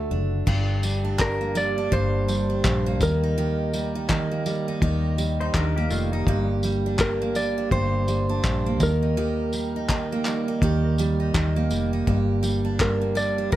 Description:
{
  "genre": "acoustic pop",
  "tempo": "83 BPM",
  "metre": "4/4",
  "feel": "swing 60% on 16ths",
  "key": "G minor",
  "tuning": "A4 = 440 Hz",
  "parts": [
    { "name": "picked steel-string acoustic guitar", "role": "accompaniment", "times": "0.0-13.6 s", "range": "G2 to A4", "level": "-25 LUFS", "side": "right 3 dB", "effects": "none" },
    { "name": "vintage muted fingered electric bass", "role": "bass", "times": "0.0-13.6 s", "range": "F1 to Eb2", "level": "-26 LUFS", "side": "left 1 dB", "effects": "none" },
    { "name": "cloth-damped thuddy drum kit", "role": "drums", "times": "0.5-13.6 s", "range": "crash cymbal, handclaps, kick drum, tambourine", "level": "-26 LUFS", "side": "left 1 dB", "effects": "none" },
    { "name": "clean lap steel guitar", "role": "melody", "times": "1.2-13.6 s", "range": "Bb4 to D5", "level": "-28 LUFS", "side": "equal", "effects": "none" },
    { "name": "pedal steel guitar", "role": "second line", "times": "5.4-6.5 s", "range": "G3 to C5", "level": "-30 LUFS", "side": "left 2 dB", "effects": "none" }
  ],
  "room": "light reverb",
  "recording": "none",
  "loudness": "-21 LUFS",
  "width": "side -14 dB against mid",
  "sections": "0.5-13.6 A section",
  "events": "none",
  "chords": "0.5 Gm; 3.0 Eb; 6.3 Gm; 8.8 Eb; 12.1 Gm"
}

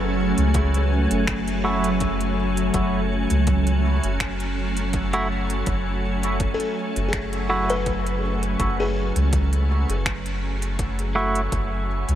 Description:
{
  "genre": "ambient dub",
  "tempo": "82 BPM",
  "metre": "4/4",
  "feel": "swing 55% on 16ths",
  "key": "F# minor",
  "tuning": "A4 = 440 Hz",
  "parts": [
    { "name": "soft additive organ-like pad", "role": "sustained chords", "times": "0.0-12.2 s", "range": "F#3 to G#5", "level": "-25 LUFS", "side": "equal", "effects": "ensemble chorus, built-in reverb" },
    { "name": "buzzing kalimba", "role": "arpeggios", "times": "0.0-11.4 s", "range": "G#4 to B4", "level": "-32 LUFS", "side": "left 3 dB", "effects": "dub echo" },
    { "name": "soft dub sub bass", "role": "bass", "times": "0.0-12.2 s", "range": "F#1 to C#2", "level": "-24 LUFS", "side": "equal", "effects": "none" },
    { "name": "organic electronic drum kit", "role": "drums", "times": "0.4-12.2 s", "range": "finger snaps, hi-hat", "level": "-33 LUFS", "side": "right 1 dB", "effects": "dub echo" },
    { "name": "electronic kick drum", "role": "drums", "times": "0.5-11.7 s", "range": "none", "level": "-28 LUFS", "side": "equal", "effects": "overdrive" },
    { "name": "clean electric guitar", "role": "stabs", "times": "1.6-11.4 s", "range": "A3 to F#4", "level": "-28 LUFS", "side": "right 1 dB", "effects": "dub echo" }
  ],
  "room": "moderate huge ambient reverb, RT60 7.0 s",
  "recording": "dreamy mix soaked in reverb",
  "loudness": "-20 LUFS",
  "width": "side -11 dB against mid",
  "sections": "0.0-12.2 A section",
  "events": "none",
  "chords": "0.0 F#m"
}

